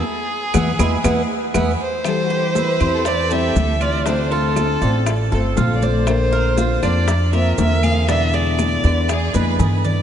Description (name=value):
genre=latin, Cuban son and guajira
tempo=119 BPM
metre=4/4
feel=straight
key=A minor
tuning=A4 = 439 Hz
part: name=warm violin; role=melody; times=0.0-10.0 s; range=G#4 to F5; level=-23 LUFS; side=right 2 dB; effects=analog delay
part: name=picked steel-string acoustic guitar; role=accompaniment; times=0.0-10.0 s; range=B2 to F4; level=-23 LUFS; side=left 5 dB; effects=none
part: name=Cuban tres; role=arpeggios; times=0.0-10.0 s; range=B3 to D5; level=-25 LUFS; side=right 4 dB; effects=none
part: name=upright bass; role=bass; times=0.5-10.0 s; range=G1 to G2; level=-19 LUFS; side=equal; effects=none
part: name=bongos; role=percussion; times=0.5-9.8 s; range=none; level=-29 LUFS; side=left 6 dB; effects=none
part: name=claves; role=percussion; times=0.5-9.3 s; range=none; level=-34 LUFS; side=right 6 dB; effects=none
part: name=congas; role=percussion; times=0.5-10.0 s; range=none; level=-27 LUFS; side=equal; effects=none
part: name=maracas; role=percussion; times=0.5-10.0 s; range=none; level=-38 LUFS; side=right 10 dB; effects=none
part: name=clear studio violin section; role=second line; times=2.0-3.9, 8.8-9.7 s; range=E4 to B4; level=-28 LUFS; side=right 3 dB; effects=analog delay
room=moderate lush hall reverb, RT60 2.7 s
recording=dreamy mix soaked in reverb, nothing above 10.8 kHz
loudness=-16 LUFS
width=side -9 dB against mid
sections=0.0-2.0 A section; 2.0-10.0 B section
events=band accent 0.0-2.0; drum fill 1.0-2.0, 9.3-10.0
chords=0.0 E; 2.0 Am7; 4.1 Dm7; 6.1 Bbadd9; 8.1 E7